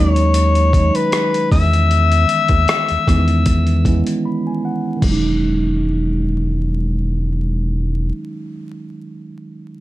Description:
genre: R&B, neo-soul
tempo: 77 BPM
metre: 4/4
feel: swing 54% on 16ths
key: E major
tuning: A4 = 441 Hz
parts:
  - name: warm tenor saxophone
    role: melody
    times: 0.0-4.2 s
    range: B4 to E5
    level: -18 LUFS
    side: left 5 dB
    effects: slapback echo
  - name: mellow tine electric piano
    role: accompaniment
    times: 0.0-9.8 s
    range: D#3 to B5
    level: -21 LUFS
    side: right 2 dB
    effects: phaser
  - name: rubbery square bass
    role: bass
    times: 0.0-8.1 s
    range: E1 to E2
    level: -16 LUFS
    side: equal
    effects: none
  - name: boom bap sampler-style drum kit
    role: drums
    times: 0.2-5.2 s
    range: crash cymbal, hi-hat, kick drum, rim click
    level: -20 LUFS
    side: equal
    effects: none
room: moderate studio reverb, RT60 0.8 s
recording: dark, warm production, vinyl crackle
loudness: -14 LUFS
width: side -15 dB against mid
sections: 0.0-5.0 A section; 5.0-8.1 B section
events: tine electric piano fill 3.9-5.0; break 4.2-5.0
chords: 0.0 Emaj13; 1.5 Emaj13/D#; 5.0 Emaj13

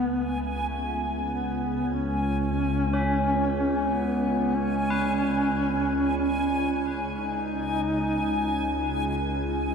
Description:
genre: dark ambient drone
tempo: 46 BPM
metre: 4/4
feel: straight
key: unclear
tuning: A4 = 440 Hz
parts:
  - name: warm duduk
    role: melody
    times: 0.0-9.1 s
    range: B3 to D#4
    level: -28 LUFS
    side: left 1 dB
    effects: shimmer reverb, diffuse ambient delay
  - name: bowed-like drone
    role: drone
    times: 0.0-9.7 s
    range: C#2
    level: -28 LUFS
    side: right 1 dB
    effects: built-in reverb, phaser
  - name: backwards swelling texture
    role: texture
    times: 0.3-9.7 s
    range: G#5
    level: -32 LUFS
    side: left 1 dB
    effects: built-in reverb, shimmer reverb
  - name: tubular bells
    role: arpeggios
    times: 2.9-9.7 s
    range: C#4 to B4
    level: -32 LUFS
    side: left 3 dB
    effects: shimmer reverb, diffuse ambient delay
room: wet cathedral reverb, RT60 5.7 s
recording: dark, warm production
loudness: -24 LUFS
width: side -6 dB against mid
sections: 0.0-9.7 A section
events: none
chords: 0.0 C#5

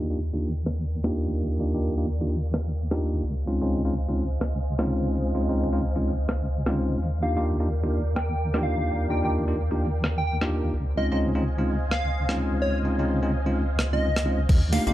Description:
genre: UK garage, two-step garage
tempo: 128 BPM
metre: 4/4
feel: swing 61% on 16ths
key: unclear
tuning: A4 = 440 Hz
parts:
  - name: soft string machine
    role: sustained chords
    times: 0.0-14.9 s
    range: Bb4 to Ab5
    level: -36 LUFS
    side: right 1 dB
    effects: phaser, ensemble chorus, sidechain pumping
  - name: bell-like tine electric piano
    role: stabs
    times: 0.0-14.9 s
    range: Ab3 to G4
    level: -28 LUFS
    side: equal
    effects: low-pass filter, dub echo
  - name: deep soft wobble bass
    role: bass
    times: 0.0-14.9 s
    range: Bb1 to Eb2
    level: -26 LUFS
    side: equal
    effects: chorus
  - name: breakbeat sampler-style drum kit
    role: drums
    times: 0.7-14.9 s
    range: congas, crash cymbal, hi-hat, rim click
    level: -30 LUFS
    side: equal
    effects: low-pass filter on hats, studio reverb, low-pass filter on snare, low-pass filter on cymbals, low-pass filter on perc
  - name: plucky unison lead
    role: melody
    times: 7.2-14.9 s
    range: Db5 to G5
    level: -31 LUFS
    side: equal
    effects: dub echo
  - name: electronic kick drum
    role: drums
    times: 14.5-14.6 s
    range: none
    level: -19 LUFS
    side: equal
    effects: studio reverb
room: digital ambience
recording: low-pass filter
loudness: -23 LUFS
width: side -14 dB against mid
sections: 0.0-14.5 A section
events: filter sweep on drum 0.0-14.5; filter sweep on tine electric piano 0.0-14.5; filter sweep on string machine 0.0-14.5; filter sweep 0.0-14.5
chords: 0.0 Ebmaj9; 3.2 Dbmaj9; 7.0 Ebmaj9; 10.7 Dbmaj9

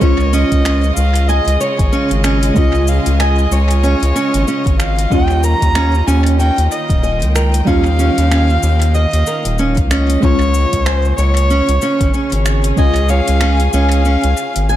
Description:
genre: organic downtempo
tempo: 94 BPM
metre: 4/4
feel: swing 58% on 16ths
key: unclear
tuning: A4 = 439 Hz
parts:
  - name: dark kamancheh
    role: melody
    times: 0.0-14.8 s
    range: C5 to Bb5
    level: -20 LUFS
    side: equal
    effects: tape echo
  - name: deep mellow chord stab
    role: accompaniment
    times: 0.0-14.8 s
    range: G3 to F4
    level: -22 LUFS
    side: left 1 dB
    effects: chorus, sidechain pumping, tape echo
  - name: dark chamber string section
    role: sustained chords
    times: 0.0-14.8 s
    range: Db3 to Ab5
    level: -23 LUFS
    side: right 1 dB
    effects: sidechain pumping
  - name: flamenco guitar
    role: arpeggios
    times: 0.0-14.8 s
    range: Db4 to Ab5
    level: -19 LUFS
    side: right 2 dB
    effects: tape echo
  - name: round analog bass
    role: bass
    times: 0.0-14.8 s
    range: Eb1 to Eb2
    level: -14 LUFS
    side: equal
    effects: sidechain pumping
  - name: afro-pop drum kit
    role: drums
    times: 0.0-14.8 s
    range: finger snaps, hi-hat, shaker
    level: -25 LUFS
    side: left 1 dB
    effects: tape echo
  - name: electronic kick drum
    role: drums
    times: 0.0-12.9 s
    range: none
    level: -16 LUFS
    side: equal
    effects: none
room: light reverb, digital ambience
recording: echo-heavy mix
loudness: -11 LUFS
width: side -12 dB against mid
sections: 0.0-14.8 A section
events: none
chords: 0.0 Db; 5.1 Eb7; 10.2 Db

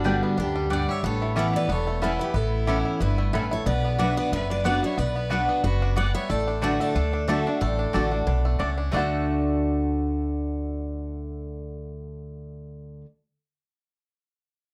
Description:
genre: bluegrass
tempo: 183 BPM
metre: 4/4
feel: swing 54% on 8ths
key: D major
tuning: A4 = 440 Hz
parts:
  - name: bluegrass banjo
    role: melody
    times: 0.0-13.0 s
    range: G3 to A4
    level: -35 LUFS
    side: equal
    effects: none
  - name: picked steel-string acoustic guitar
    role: melody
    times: 0.0-8.6 s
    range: F#4 to F#5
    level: -34 LUFS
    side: equal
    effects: slapback echo
  - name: clear fiddle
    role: second line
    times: 0.0-8.6 s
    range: D4 to D5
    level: -36 LUFS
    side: equal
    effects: slapback echo
  - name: picked steel-string acoustic guitar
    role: accompaniment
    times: 0.0-13.1 s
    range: E2 to F#4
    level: -30 LUFS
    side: equal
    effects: none
  - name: mandolin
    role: stabs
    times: 0.0-13.1 s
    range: A3 to B5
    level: -33 LUFS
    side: equal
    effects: none
  - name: upright bass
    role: bass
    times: 0.0-13.0 s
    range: E1 to D2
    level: -30 LUFS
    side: equal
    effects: none
room: moderate studio reverb, RT60 0.5 s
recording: dark, warm production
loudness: -25 LUFS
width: mono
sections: 0.0-8.9 A section; 8.9-11.6 B section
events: none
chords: 0.0 G; 1.0 Aadd9; 3.7 Bm; 6.3 D/A; 8.9 D

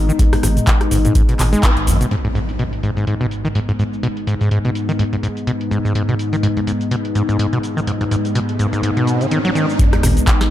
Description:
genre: acid house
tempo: 125 BPM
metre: 4/4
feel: swing 56% on 16ths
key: G# minor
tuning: A4 = 441 Hz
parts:
  - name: warm analog pad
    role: sustained chords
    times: 0.0-10.5 s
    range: G#2 to D#4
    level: -21 LUFS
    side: left 2 dB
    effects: chorus, sidechain pumping
  - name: round analog bass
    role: bass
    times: 0.0-2.0, 10.0-10.2 s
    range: G#1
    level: -17 LUFS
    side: equal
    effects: sidechain pumping
  - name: acid bass, saw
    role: riff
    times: 0.1-10.3 s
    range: G#1 to B3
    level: -19 LUFS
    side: equal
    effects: overdrive, sidechain pumping, tape echo
  - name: booming analog drum machine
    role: drums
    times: 0.1-10.5 s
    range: handclaps, hi-hat, rim click, shaker, snare drum, toms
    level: -23 LUFS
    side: equal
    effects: low-pass filter on hats, low-pass filter on perc, low-pass filter on snare, low-pass filter on toms
  - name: electronic kick drum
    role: drums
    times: 0.2-1.7, 9.8-10.4 s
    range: none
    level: -16 LUFS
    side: equal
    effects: overdrive
  - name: impact, riser and sub drop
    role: sound effects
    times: 2.1-10.5 s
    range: none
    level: -25 LUFS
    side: right 1 dB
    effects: none
room: little or no reverb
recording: none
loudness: -15 LUFS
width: side -12 dB against mid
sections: 0.0-2.1 A section; 2.1-9.8 B section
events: band accent 1.6; impact 2.1-4.0, 9.8-10.5; filter sweep on analog synth pad 2.1-9.8; riser 7.6-9.8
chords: 0.0 G#m

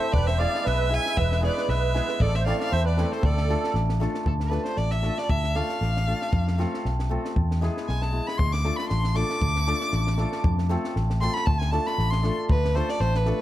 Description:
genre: balkan folk, Balkan wedding band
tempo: 116 BPM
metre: 2/4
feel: swing 54% on 16ths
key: D dorian sharp4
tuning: A4 = 440 Hz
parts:
  - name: rich violin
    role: melody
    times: 0.0-13.4 s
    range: A4 to D6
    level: -29 LUFS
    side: equal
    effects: none
  - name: musette accordion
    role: second line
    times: 0.0-3.8 s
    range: A4 to E5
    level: -30 LUFS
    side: right 8 dB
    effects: none
  - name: hammered dulcimer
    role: accompaniment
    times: 0.0-13.4 s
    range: G#3 to A4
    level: -30 LUFS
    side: left 1 dB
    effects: none
  - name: fingered electric bass with an envelope filter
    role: bass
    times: 0.1-13.3 s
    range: E1 to F2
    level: -25 LUFS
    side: equal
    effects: none
  - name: compact cocktail drum kit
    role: percussion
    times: 0.1-13.3 s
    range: kick drum, snare drum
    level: -30 LUFS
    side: equal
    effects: none
room: little or no reverb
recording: close, detailed microphones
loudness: -22 LUFS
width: side -13 dB against mid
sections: 0.0-4.3 A section; 4.3-12.5 B section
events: violin solo 4.3-12.5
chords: 0.1 E; 2.2 Am; 3.2 Dm; 6.3 F; 7.4 E; 8.4 Dm; 10.4 F; 11.5 Dm

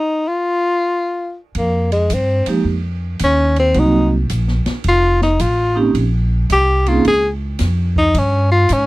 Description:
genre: jazz, small-group swing and bop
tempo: 109 BPM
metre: 4/4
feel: swing 67% on 8ths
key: F minor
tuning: A4 = 440 Hz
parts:
  - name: clear tenor saxophone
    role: melody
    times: 0.0-8.9 s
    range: Ab3 to Ab4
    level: -15 LUFS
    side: left 1 dB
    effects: none
  - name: open jazz drum kit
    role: drums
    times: 1.5-8.9 s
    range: hi-hat, kick drum, ride cymbal, snare drum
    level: -29 LUFS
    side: right 1 dB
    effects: none
  - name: upright bass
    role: bass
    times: 1.6-8.9 s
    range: F1 to Ab2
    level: -17 LUFS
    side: equal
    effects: none
  - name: vibraphone with medium mallets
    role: accompaniment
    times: 2.5-7.0 s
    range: F3 to Ab4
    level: -16 LUFS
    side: right 4 dB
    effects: none
room: little or no reverb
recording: dry, close 1970s-style studio recording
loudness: -14 LUFS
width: side -19 dB against mid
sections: 0.0-1.5 A section; 1.5-8.9 B section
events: stop 0.0-1.5; tenor saxophone solo 1.5-8.9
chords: 0.0 N.C.; 1.5 F7sus2; 3.8 Cm7b5; 4.8 F7; 6.0 Bbmadd9; 8.2 G(b5, no3)

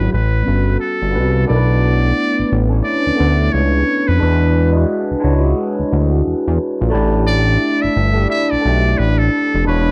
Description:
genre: R&B, neo-soul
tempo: 88 BPM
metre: 4/4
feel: swing 61% on 16ths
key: unclear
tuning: A4 = 439 Hz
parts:
  - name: trumpet with metal mute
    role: melody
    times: 0.0-9.9 s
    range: A4 to E5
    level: -22 LUFS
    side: equal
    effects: none
  - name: barky tine electric piano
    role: accompaniment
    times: 0.0-9.9 s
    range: F#3 to E5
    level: -20 LUFS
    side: equal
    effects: overdrive, phaser
  - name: fat analog bass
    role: bass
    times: 0.0-9.9 s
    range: E1 to E#2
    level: -17 LUFS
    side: equal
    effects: none
room: light reverb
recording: dark, warm production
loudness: -16 LUFS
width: mono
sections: 0.0-1.5 A section; 1.5-9.9 B section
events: none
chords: 0.1 A13; 1.5 Bm11; 4.2 E9; 6.9 A7sus4

